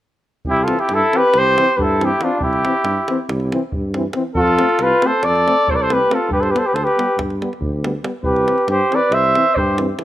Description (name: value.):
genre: balkan folk, Balkan brass band.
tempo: 278 BPM (eighths).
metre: 9/8.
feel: straight.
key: C major.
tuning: A4 = 440 Hz.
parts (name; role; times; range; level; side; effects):
davul; percussion; 0.4-10.0 s; none; -28 LUFS; right 1 dB; none.
mellow cornet; melody; 0.5-9.8 s; F4 to E5; -17 LUFS; equal; none.
mellow trumpet; second line; 0.5-9.8 s; D4 to C5; -20 LUFS; right 1 dB; none.
mellow tuba; bass; 0.5-9.9 s; C2 to G2; -22 LUFS; equal; none.
warm euphonium; accompaniment; 0.7-10.0 s; E3 to A3; -30 LUFS; right 5 dB; none.
warm trombone; accompaniment; 0.7-10.0 s; B3 to C4; -26 LUFS; left 4 dB; none.
room: light reverb, studio ambience.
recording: rough home demo mix.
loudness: -14 LUFS.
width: side -13 dB against mid.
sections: 0.5-10.0 A section.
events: none.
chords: 0.5 C; 4.4 F; 6.3 G; 8.2 C.